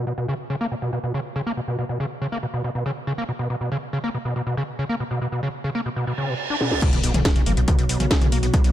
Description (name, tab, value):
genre	driving peak-time techno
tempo	140 BPM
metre	4/4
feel	straight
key	unclear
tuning	A4 = 439 Hz
part	overdriven acid bass	riff	0.0-8.7 s	B1 to D4	-25 LUFS	equal	analog chorus, sidechain pumping, dub echo
part	reverse cymbal and impact	sound effects	6.1-8.5 s	none	-30 LUFS	right 2 dB	none
part	techno drum kit	drums	6.6-8.7 s	crash cymbal, hi-hat, snare drum, toms	-24 LUFS	left 1 dB	low-pass filter on snare, low-pass filter on hats, low-pass filter on cymbals, low-pass filter on toms, low-pass filter on room
part	metallic inharmonic drone	drone	7.4-8.7 s	B2 to F#3	-29 LUFS	equal	chorus, built-in reverb, sidechain pumping
part	electronic kick drum	drums	6.8-8.6 s	none	-20 LUFS	equal	none
part	dark detuned saw bass	bass	6.9-8.7 s	F#1 to B1	-23 LUFS	equal	sidechain pumping
room	light reverb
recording	none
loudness	-21 LUFS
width	side -12 dB against mid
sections	0.0-6.8 A section; 6.8-8.7 B section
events	reverse cymbal 6.1-6.8; drum fill 6.6; drop 6.8-8.7; impact 6.8-8.5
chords	0.0 Bsus2; 6.8 B5